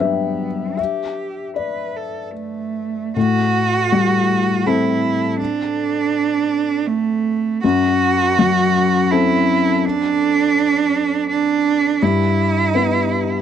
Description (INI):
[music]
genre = neoclassical piano and strings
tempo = 72-83 BPM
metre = 3/4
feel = rubato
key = unclear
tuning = A4 = 440 Hz
[part]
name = rich cello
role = second line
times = 0.0-13.4 s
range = A3 to B4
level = -18 LUFS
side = right 6 dB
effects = none
[part]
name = felt-muted upright piano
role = accompaniment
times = 0.0-13.4 s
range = F#2 to G5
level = -19 LUFS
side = left 4 dB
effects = none
[sound]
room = studio reverb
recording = dry, close 1970s-style studio recording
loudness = -15 LUFS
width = side -9 dB against mid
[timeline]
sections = 0.0-3.2 A section; 3.2-13.4 A section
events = none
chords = 0.0 Gmaj7; 3.2 Am7; 7.6 F#dim; 12.0 Em/G